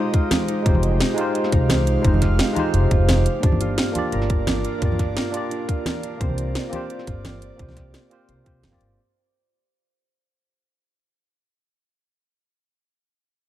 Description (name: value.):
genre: liquid drum and bass.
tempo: 173 BPM.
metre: 4/4.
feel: swing 53% on 16ths.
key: unclear.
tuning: A4 = 440 Hz.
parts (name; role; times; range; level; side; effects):
tine electric piano; accompaniment; 0.0-9.0 s; Ab3 to D5; -26 LUFS; equal; medium stereo tremolo, digital delay.
airy breathy pad; sustained chords; 0.0-9.0 s; Ab3 to F5; -32 LUFS; left 1 dB; chorus.
concert harp; arpeggios; 0.0-11.0 s; D4 to C5; -28 LUFS; right 2 dB; digital delay.
drum and bass drum kit; drums; 0.1-8.9 s; hi-hat, snare drum; -26 LUFS; right 1 dB; overdrive.
electronic kick drum; drums; 0.1-8.8 s; none; -20 LUFS; equal; overdrive.
congas; percussion; 0.3-8.7 s; none; -29 LUFS; right 2 dB; none.
upright bass; bass; 0.7-9.0 s; F1 to C2; -22 LUFS; equal; none.
room: light reverb.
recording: dark, warm production.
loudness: -18 LUFS.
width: side -13 dB against mid.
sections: 0.0-9.0 A section.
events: drop 0.0-9.0; fade-out 3.4-9.0.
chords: 0.0 Fm9; 3.3 Gm7; 6.2 C7sus4.